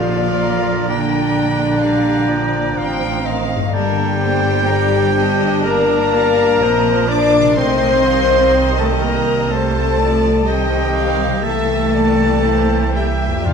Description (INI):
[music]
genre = classical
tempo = 63 BPM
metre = 4/4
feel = rubato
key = unclear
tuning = A4 = 443 Hz
[part]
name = warm chamber violin section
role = melody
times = 0.0-13.5 s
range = D5 to D6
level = -28 LUFS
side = left 1 dB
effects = none
[part]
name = concert flute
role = second line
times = 0.0-13.5 s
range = F5 to Bb5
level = -27 LUFS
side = equal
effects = none
[part]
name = mellow clarinet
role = second line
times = 0.0-13.5 s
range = Bb4 to G5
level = -27 LUFS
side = left 2 dB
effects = none
[part]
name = rich chamber violin section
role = second line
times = 0.0-13.5 s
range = Bb4 to G5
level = -26 LUFS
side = left 5 dB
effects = none
[part]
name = warm oboe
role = second line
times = 0.0-13.5 s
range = D4 to D5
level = -25 LUFS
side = right 4 dB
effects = none
[part]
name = warm chamber viola section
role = accompaniment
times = 0.0-13.5 s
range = D3 to D4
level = -24 LUFS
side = right 4 dB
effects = none
[part]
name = mellow French horn section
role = sustained chords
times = 0.0-13.5 s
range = D4 to D5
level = -18 LUFS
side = left 4 dB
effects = none
[part]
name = concert harp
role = arpeggios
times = 0.0-13.5 s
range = F2 to F5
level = -27 LUFS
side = left 8 dB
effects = none
[part]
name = rich chamber cello section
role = bass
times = 0.0-13.5 s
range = D3 to D4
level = -22 LUFS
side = right 2 dB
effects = none
[part]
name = warm chamber double bass section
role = bass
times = 0.0-13.5 s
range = G1 to F2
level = -22 LUFS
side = right 5 dB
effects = none
[part]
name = timpani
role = percussion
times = 0.0-1.3, 13.5 s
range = F2 to Bb2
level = -26 LUFS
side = equal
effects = none
[sound]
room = wet scoring stage reverb, RT60 1.8 s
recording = dark, warm production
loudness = -13 LUFS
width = side -6 dB against mid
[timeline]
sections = 0.0-13.5 A section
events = none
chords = 0.0 Bb; 3.7 Gm; 7.6 Cm7; 11.4 C7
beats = 0.90 1.83 2.77 | 3.73 4.67 5.64 6.61 | 7.57 8.54 9.50 10.45 | 11.44 12.45 13.46